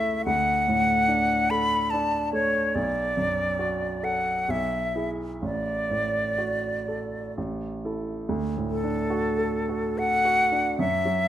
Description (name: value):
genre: classical, romantic duo for flute and grand piano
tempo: 62-76 BPM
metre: 3/4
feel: rubato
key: D major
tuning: A4 = 439 Hz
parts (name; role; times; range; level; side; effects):
- bright silver concert flute; melody; 0.0-11.3 s; A4 to B5; -24 LUFS; left 2 dB; none
- warm baby grand piano; accompaniment; 0.0-11.3 s; A1 to A4; -28 LUFS; right 2 dB; none
room: moderate scoring stage reverb, RT60 1.7 s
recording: close, detailed microphones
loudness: -23 LUFS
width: side -11 dB against mid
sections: 0.0-8.3 A section; 8.3-11.3 B section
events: none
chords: 0.3 D; 2.8 Bm7; 4.5 E/B; 5.4 D/A; 7.4 A5; 8.3 D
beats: | 0.27 1.08 1.92 | 2.75 3.60 4.50 | 5.43 6.40 7.37 | 8.30 9.12 9.98 | 10.79